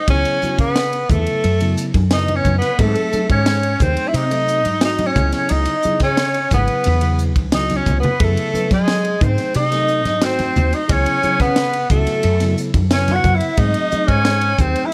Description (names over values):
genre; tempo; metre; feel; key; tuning
electric jazz fusion; 89 BPM; 4/4; straight; F# dorian; A4 = 439 Hz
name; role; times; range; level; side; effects
clear tenor saxophone; melody; 0.0-14.9 s; G#3 to F#4; -22 LUFS; equal; none
breathy bright jazz flute; second line; 0.0-14.9 s; G#4 to F#5; -27 LUFS; equal; analog delay
mellow tine electric piano; accompaniment; 0.1-14.9 s; C#3 to B4; -27 LUFS; equal; phaser
woody fretless electric bass; bass; 0.1-14.7 s; G#1 to F#3; -22 LUFS; equal; ensemble chorus
crisp fusion drum kit; drums; 0.1-14.9 s; hi-hat, kick drum, ride cymbal, snare drum; -24 LUFS; equal; none
congas; percussion; 0.4-14.8 s; none; -27 LUFS; equal; none
room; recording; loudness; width
little or no reverb; none; -17 LUFS; mono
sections
0.0-14.9 A section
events
drum fill 7.4-8.2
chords
0.1 C#m7; 1.4 F#m7; 2.8 G#7b9; 5.2 C#m7; 8.2 F#m9; 9.2 G#7b9; 10.9 C#m7; 12.2 F#m7; 13.6 G#7b9